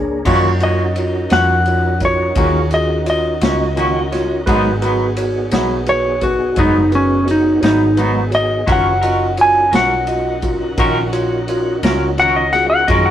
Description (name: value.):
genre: slow blues.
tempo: 57 BPM (dotted quarters).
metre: 12/8.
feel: straight.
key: Eb minor.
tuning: A4 = 440 Hz.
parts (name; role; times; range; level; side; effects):
barky tine electric piano; accompaniment; 0.0-13.1 s; D4 to Eb5; -21 LUFS; equal; none.
tonewheel organ; sustained chords; 0.0-13.1 s; Bb3 to Cb5; -26 LUFS; right 2 dB; slow rotary speaker, chorus vibrato.
vintage muted fingered electric bass; bass; 0.0-13.1 s; Gb1 to Gb2; -21 LUFS; equal; none.
twangy electric guitar; accompaniment; 0.3-13.1 s; Ab2 to Bb4; -20 LUFS; equal; harmonic tremolo.
vintage drum kit; drums; 0.3-13.0 s; crash cymbal, kick drum, ride cymbal, snare drum; -22 LUFS; equal; none.
clean lap steel guitar; melody; 0.6-13.1 s; Db4 to Ab5; -16 LUFS; equal; none.
room: moderate stone room reverb, RT60 1.2 s.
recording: rough rehearsal-room recording.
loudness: -13 LUFS.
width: side -11 dB against mid.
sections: 0.3-13.1 A section.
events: electric slide guitar solo 0.3-13.1.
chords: 0.3 Ebm7; 4.5 Abm7; 8.7 Ebm7.